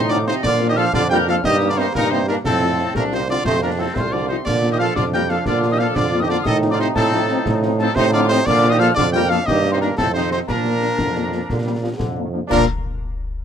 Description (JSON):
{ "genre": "military-style march for wind band", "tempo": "119 BPM (dotted quarters)", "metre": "6/8", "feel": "straight", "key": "Bb major", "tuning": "A4 = 440 Hz", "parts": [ { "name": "clear woodwind section", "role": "second line", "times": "0.0-12.7 s", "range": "C4 to Bb4", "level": "-26 LUFS", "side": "left 4 dB", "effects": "none" }, { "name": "mellow piccolo", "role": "second line", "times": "0.0-12.7 s", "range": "A5 to G6", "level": "-26 LUFS", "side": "left 4 dB", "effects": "none" }, { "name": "bright trombone section", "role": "sustained chords", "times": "0.0-12.6 s", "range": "D3 to Eb4", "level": "-28 LUFS", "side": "right 2 dB", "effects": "none" }, { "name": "clear tuba", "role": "bass", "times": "0.0-12.6 s", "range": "C2 to Bb2", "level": "-21 LUFS", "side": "right 3 dB", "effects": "none" }, { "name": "clear cornet", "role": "melody", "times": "0.1-12.7 s", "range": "A4 to G5", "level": "-24 LUFS", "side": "right 1 dB", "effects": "none" }, { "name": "warm euphonium", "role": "second line", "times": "0.1-12.6 s", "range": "A2 to Bb3", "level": "-25 LUFS", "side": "right 4 dB", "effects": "none" }, { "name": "mellow French horn section", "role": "accompaniment", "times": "0.1-12.7 s", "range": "F3 to F4", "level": "-24 LUFS", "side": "left 6 dB", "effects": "none" }, { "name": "concert snare drum, clash cymbals and concert bass drum", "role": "drums", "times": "0.3-12.7 s", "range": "none", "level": "-26 LUFS", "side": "left 1 dB", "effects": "none" } ], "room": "light reverb", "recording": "none", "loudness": "-16 LUFS", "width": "side -8 dB against mid", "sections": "0.0-12.5 A section", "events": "none", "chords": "0.4 Bb; 1.4 Eb/G; 2.5 F; 4.5 Bb; 6.5 F7/A; 8.5 Bb; 9.5 Eb/G; 10.0 F5; 10.5 Bb" }